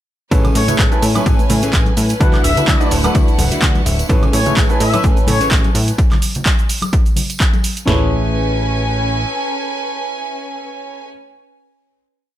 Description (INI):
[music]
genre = filtered disco house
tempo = 127 BPM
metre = 4/4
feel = swing 55% on 16ths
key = A major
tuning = A4 = 440 Hz
[part]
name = dark concert grand piano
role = accompaniment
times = 0.3-11.1 s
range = A3 to G#5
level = -23 LUFS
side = right 1 dB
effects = phaser, sidechain pumping
[part]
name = clear studio violin section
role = sustained chords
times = 0.3-11.1 s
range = C#4 to G#5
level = -24 LUFS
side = right 1 dB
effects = sidechain pumping
[part]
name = mellow electric guitar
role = riff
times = 0.3-11.1 s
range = C#4 to F#5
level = -26 LUFS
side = equal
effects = sidechain pumping
[part]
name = plucky analog bass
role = bass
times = 0.3-9.3 s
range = D1 to A2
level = -18 LUFS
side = equal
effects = sidechain pumping
[part]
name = punchy analog drum machine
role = drums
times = 0.3-8.0 s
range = kick drum, snare drum, toms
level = -15 LUFS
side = equal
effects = overdrive
[part]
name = punchy analog drum machine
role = drums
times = 0.3-7.9 s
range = handclaps, hi-hat, shaker, woodblock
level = -21 LUFS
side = right 1 dB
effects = overdrive, sidechain pumping on hats, sidechain pumping on perc
[part]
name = tambourine and congas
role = percussion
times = 0.3-7.9 s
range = none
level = -25 LUFS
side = left 1 dB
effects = sidechain pumping on perc
[part]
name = warm trumpet section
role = melody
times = 0.6-5.5 s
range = C#5 to F#5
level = -21 LUFS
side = left 3 dB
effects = vintage 12-bit sampler grit, sidechain pumping, digital delay
[sound]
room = little or no reverb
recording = none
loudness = -13 LUFS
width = side -12 dB against mid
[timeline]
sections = 0.3-7.9 drop; 7.9-11.7 final chord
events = drop 0.3-7.9; clean electric guitar fill 3.1-4.1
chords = 0.3 Amaj9; 2.2 D69; 4.1 Amaj9; 6.0 N.C.; 7.9 Amaj9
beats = | 0.32 0.79 1.26 1.73 | 2.21 2.68 3.15 3.62 | 4.09 4.57 5.04 5.51 | 5.99 6.46 6.93 7.40 | 7.87 8.35 8.82 9.29 | 9.76 10.24 10.71